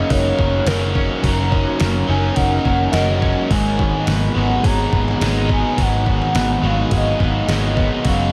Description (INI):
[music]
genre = rock, shoegaze and dream pop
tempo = 106 BPM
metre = 4/4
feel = straight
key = unclear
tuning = A4 = 440 Hz
[part]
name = hollow clarinet-like synth lead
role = melody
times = 0.0-8.3 s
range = A#4 to A#5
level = -25 LUFS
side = equal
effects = chorus, analog delay
[part]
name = direct-recorded clean electric guitar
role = arpeggios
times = 0.0-8.3 s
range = F#3 to B4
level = -33 LUFS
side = equal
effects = none
[part]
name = distorted electric guitar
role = riff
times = 0.0-8.3 s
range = F#2 to G#3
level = -27 LUFS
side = equal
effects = overdrive
[part]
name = electric guitar through a small old amp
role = riff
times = 0.0-8.3 s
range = F#3 to D#5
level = -27 LUFS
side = equal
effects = reverse reverb
[part]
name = overdriven semi-hollow guitar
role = riff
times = 0.0-8.3 s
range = G#2 to B4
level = -26 LUFS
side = equal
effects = lush chorus
[part]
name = vintage muted picked electric bass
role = bass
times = 0.1-8.3 s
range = F#1 to G#1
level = -23 LUFS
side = equal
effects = none
[part]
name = detuned 8-bit digital drum machine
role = drums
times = 0.1-8.2 s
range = hi-hat, kick drum, snare drum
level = -24 LUFS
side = equal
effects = overdrive
[sound]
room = wet huge ambient reverb, RT60 8.4 s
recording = dreamy mix soaked in reverb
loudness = -17 LUFS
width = mono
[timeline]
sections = 0.0-8.3 A section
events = none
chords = 0.0 F#6; 3.5 G#m7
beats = 0.10 0.67 | 1.24 1.80 2.37 2.94 | 3.51 4.08 4.65 5.21 | 5.78 6.35 6.92 7.49 | 8.06